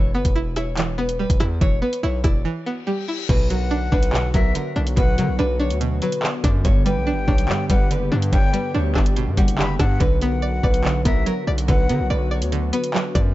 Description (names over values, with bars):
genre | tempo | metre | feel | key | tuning
hip hop, drill | 143 BPM | 4/4 | half-time | B harmonic minor | A4 = 439 Hz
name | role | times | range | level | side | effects
nylon-string guitar | melody | 0.0-13.3 s | F#4 to D5 | -28 LUFS | left 1 dB | digital delay
string-like resonator pluck | accompaniment | 0.0-13.3 s | G2 to D5 | -26 LUFS | right 2 dB | chorus
distorted 808-style bass | bass | 0.0-13.3 s | E1 to D3 | -23 LUFS | equal | distortion
drill drum kit | drums | 0.2-13.2 s | crash cymbal, handclaps, hi-hat, kick drum, rim click | -20 LUFS | equal | none
reverse cymbal | sound effects | 2.7-3.3 s | none | -34 LUFS | left 8 dB | none
warm analog pad | sustained chords | 3.3-13.3 s | D3 to G4 | -28 LUFS | equal | chorus
breathy concert flute | second line | 3.5-12.1 s | E5 to B5 | -30 LUFS | left 5 dB | digital delay
room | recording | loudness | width
digital ambience | dark, warm production, nothing above 7.7 kHz | -18 LUFS | side -16 dB against mid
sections
0.0-3.3 A section; 3.3-13.3 B section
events
break 2.5-3.3; reverse cymbal 2.7-3.3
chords
0.0 Em; 3.3 Bm; 6.6 G; 10.0 Bm